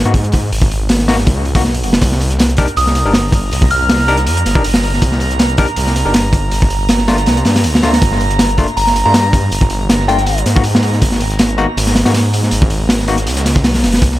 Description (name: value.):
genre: drum and bass, jungle.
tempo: 160 BPM.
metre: 4/4.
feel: straight.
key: unclear.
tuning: A4 = 440 Hz.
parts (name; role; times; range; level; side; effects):
detuned saw bass; bass; 0.0-14.2 s; Gb1 to Ab2; -16 LUFS; equal; none.
overdriven tine electric piano; stabs; 0.1-13.2 s; A3 to Bb4; -21 LUFS; left 3 dB; dub echo.
crunchy breakbeat drum kit; drums; 0.1-14.2 s; hi-hat, kick drum, snare drum; -14 LUFS; equal; none.
crunchy breakbeat drum kit; drums; 2.0-14.2 s; hi-hat, snare drum; -28 LUFS; equal; none.
drifting glass-harmonics texture; texture; 2.8-14.0 s; Bb5; -23 LUFS; right 5 dB; chorus, built-in reverb.
soft synth bell; melody; 2.8-4.1, 8.8-10.3 s; G5 to F6; -18 LUFS; left 1 dB; chorus, dub echo.
room: light reverb, studio reverb.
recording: none.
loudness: -11 LUFS.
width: side -15 dB against mid.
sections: 0.0-14.0 A section.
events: drop 0.0-14.0.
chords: 0.0 Abm7; 2.0 C7(no3); 6.5 Gm; 10.3 Abm9.